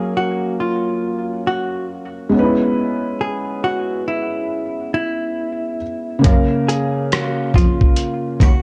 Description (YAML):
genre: lo-fi hip hop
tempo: 69 BPM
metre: 4/4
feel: swing 62% on 16ths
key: F# major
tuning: A4 = 440 Hz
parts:
  - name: hollow-body jazz guitar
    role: melody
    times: 0.0-8.6 s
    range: E4 to G#4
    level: -25 LUFS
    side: equal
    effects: none
  - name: felt-muted upright piano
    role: accompaniment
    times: 0.0-8.6 s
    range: C#3 to E#5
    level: -23 LUFS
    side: equal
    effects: cassette tape
  - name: warm cello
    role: bass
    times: 6.2-8.5 s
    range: D#2 to F#2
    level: -22 LUFS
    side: equal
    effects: none
  - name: dusty soul sampler-style drum kit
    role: drums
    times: 6.2-8.6 s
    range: hi-hat, kick drum, rim click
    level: -17 LUFS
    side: equal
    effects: overdrive
room: light reverb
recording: cassette tape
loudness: -19 LUFS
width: mono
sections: 0.0-6.2 A section; 6.2-8.6 B section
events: none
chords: 0.0 F#maj7; 2.3 C#m7; 6.2 F#maj7